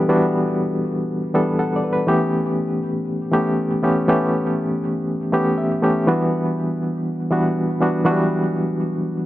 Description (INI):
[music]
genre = disco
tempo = 121 BPM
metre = 4/4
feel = straight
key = E dorian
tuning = A4 = 440 Hz
[part]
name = barky reed electric piano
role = solo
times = 0.0-9.3 s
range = E3 to F#5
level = -18 LUFS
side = equal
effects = overdrive, fast tremolo, tape echo
[sound]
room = digital ambience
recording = dry, close 1970s-style studio recording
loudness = -18 LUFS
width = side -15 dB against mid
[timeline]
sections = 0.0-9.3 A section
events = reed electric piano fill 1.3-2.1, 5.3-6.1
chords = 0.0 Em9; 2.1 A9; 6.1 Em9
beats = | 0.10 0.60 1.10 1.60 | 2.09 2.59 3.09 3.59 | 4.08 4.58 5.08 5.58 | 6.07 6.57 7.07 7.56 | 8.06 8.55 9.05